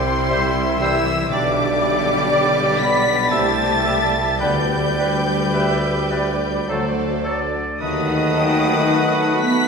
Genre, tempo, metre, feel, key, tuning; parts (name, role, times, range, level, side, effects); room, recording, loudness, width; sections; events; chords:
classical, slow romantic movement for symphony orchestra; 52-60 BPM; 3/4; rubato; G major; A4 = 441 Hz
rich studio violin section; melody; 0.0-9.7 s; C6 to B6; -24 LUFS; left 3 dB
bright clarinet; second line; 0.0-9.7 s; C5 to G5; -27 LUFS; equal
clear studio violin section; second line; 0.0-9.7 s; D#4 to F#5; -27 LUFS; left 1 dB
flute section; second line; 0.0-9.7 s; C5 to B5; -25 LUFS; left 1 dB
rich studio viola section; accompaniment; 0.0-9.7 s; G3 to G4; -26 LUFS; right 2 dB
dark French horn section; sustained chords; 0.0-9.7 s; C3 to B3; -27 LUFS; left 3 dB
concert harp; arpeggios; 0.0-9.7 s; B2 to B5; -30 LUFS; left 4 dB
clear tuba; bass; 0.0-8.7 s; B1 to D#2; -27 LUFS; right 2 dB
rich studio cello section; bass; 0.0-9.7 s; C3 to B3; -27 LUFS; right 2 dB
rich studio double bass section; bass; 0.0-8.7 s; B1 to D#2; -30 LUFS; right 2 dB
bright oboe; second line; 0.3-9.7 s; A4 to E5; -29 LUFS; equal
warm bassoon; accompaniment; 0.3-9.7 s; F#3 to A3; -28 LUFS; right 2 dB
clear trombone section; sustained chords; 1.3-9.7 s; F#3 to E4; -29 LUFS; right 2 dB
wet scoring stage reverb, RT60 2.1 s; recorded in a church or concert hall; -16 LUFS; side -5 dB against mid
0.0-9.7 A section
0.0 C; 1.3 G/B; 3.3 C; 4.4 G/D; 6.7 D; 7.8 B7/D#